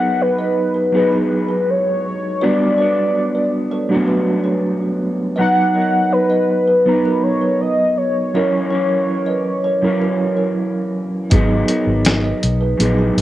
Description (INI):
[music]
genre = indie pop, bedroom pop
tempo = 81 BPM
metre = 4/4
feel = straight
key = B major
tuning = A4 = 440 Hz
[part]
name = warm velvety synth lead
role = melody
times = 0.0-10.9 s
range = B4 to F#5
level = -18 LUFS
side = left 1 dB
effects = wide subtle chorus, cassette tape, tape echo
[part]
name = kalimba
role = second line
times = 0.0-13.2 s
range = E4 to D#5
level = -26 LUFS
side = right 3 dB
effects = lush chorus, cassette tape, tape echo
[part]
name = electric guitar through a small old amp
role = accompaniment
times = 0.0-13.2 s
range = F#2 to D#4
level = -24 LUFS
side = left 2 dB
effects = wide subtle chorus, warbly pitch drift, cassette tape
[part]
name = mellow reed electric piano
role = accompaniment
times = 0.0-13.2 s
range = F#3 to A#5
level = -19 LUFS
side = right 2 dB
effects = fast tremolo, cassette tape
[part]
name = vintage muted fingered electric bass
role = bass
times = 11.3-13.2 s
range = G#1 to B1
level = -19 LUFS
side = equal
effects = none
[part]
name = dusty soul sampler-style drum kit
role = drums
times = 11.3-13.2 s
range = hi-hat, kick drum, snare drum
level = -16 LUFS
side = equal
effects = cassette tape
[sound]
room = light reverb, digital ambience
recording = home recording on cassette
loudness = -15 LUFS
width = side -14 dB against mid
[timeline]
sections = 0.0-13.2 A section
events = none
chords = 0.0 G#m7; 2.4 Gmaj7; 5.4 Bmaj7; 8.4 F#7; 11.3 G#m7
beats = 0.18 0.93 1.67 | 2.41 3.15 3.90 4.64 | 5.38 6.12 6.87 7.61 | 8.35 9.09 9.83 10.58 | 11.32 12.06 12.80